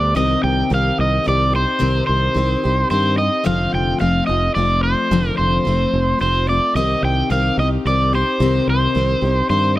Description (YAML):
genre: folk rock and heartland rock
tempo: 109 BPM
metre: 3/4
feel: straight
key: C dorian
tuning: A4 = 441 Hz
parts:
  - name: overdriven slide guitar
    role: melody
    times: 0.0-9.8 s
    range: C5 to G5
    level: -19 LUFS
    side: right 1 dB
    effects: none
  - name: picked steel-string acoustic guitar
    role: accompaniment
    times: 0.0-9.8 s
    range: F2 to G4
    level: -21 LUFS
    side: left 4 dB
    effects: none
  - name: fingered electric bass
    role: bass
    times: 0.0-9.8 s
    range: F1 to G2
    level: -19 LUFS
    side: right 1 dB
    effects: none
room: small room ambience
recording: none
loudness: -15 LUFS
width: side -15 dB against mid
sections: 0.2-9.8 A section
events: none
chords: 0.2 Cm; 3.5 F6; 6.8 Cm